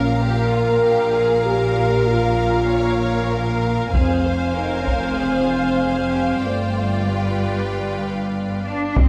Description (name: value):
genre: cinematic, epic orchestral film score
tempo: 96 BPM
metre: 4/4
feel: straight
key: unclear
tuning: A4 = 440 Hz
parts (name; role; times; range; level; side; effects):
- clear symphonic violin section; melody; 0.0-9.1 s; F4 to Eb5; -32 LUFS; equal; none
- rich studio violin section; second line; 0.0-9.1 s; C5 to Bb5; -31 LUFS; equal; none
- clear symphonic viola section; accompaniment; 0.0-9.1 s; G3 to F5; -29 LUFS; equal; none
- dark French horn section; sustained chords; 0.0-9.1 s; G3 to Bb4; -24 LUFS; equal; none
- rich symphonic cello section; bass; 0.0-9.1 s; F2 to D4; -27 LUFS; equal; none
- rich symphonic double bass section; bass; 0.0-9.1 s; F1 to C2; -27 LUFS; equal; none
- taiko ensemble; drums; 3.9-5.2, 9.0-9.1 s; none; -20 LUFS; equal; none
room: moderate scoring stage reverb, RT60 1.5 s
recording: none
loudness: -20 LUFS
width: mono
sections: 0.0-9.0 A section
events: none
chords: 0.0 Bb5; 3.9 Fm; 6.4 G7